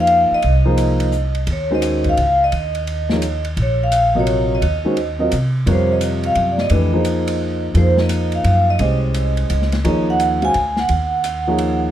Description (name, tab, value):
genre	modal jazz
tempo	172 BPM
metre	3/4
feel	swing 64% on 8ths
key	F phrygian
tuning	A4 = 438 Hz
part	vibraphone with medium hard mallets	melody	0.0-11.8 s	C5 to Ab5	-19 LUFS	right 1 dB	none
part	dark concert grand piano	accompaniment	0.0-11.9 s	C3 to F5	-20 LUFS	left 1 dB	none
part	upright bass	bass	0.0-11.9 s	Bb1 to C3	-19 LUFS	equal	none
part	open jazz drum kit	drums	0.1-11.7 s	hi-hat, kick drum, ride cymbal, snare drum	-29 LUFS	left 1 dB	none
room	light reverb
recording	dark, warm production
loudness	-15 LUFS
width	side -11 dB against mid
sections	0.0-11.9 A section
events	none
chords	0.0 Fm7; 1.5 Ebm9; 5.7 Fm9; 9.8 Ebm9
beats	0.08 | 0.43 0.78 1.13 | 1.48 1.83 2.18 | 2.52 2.87 3.22 | 3.57 3.92 4.27 | 4.62 4.97 5.32 | 5.66 6.01 6.36 | 6.71 7.06 7.41 | 7.76 8.10 8.45 | 8.80 9.15 9.50 | 9.85 10.20 10.54 | 10.89 11.24 11.59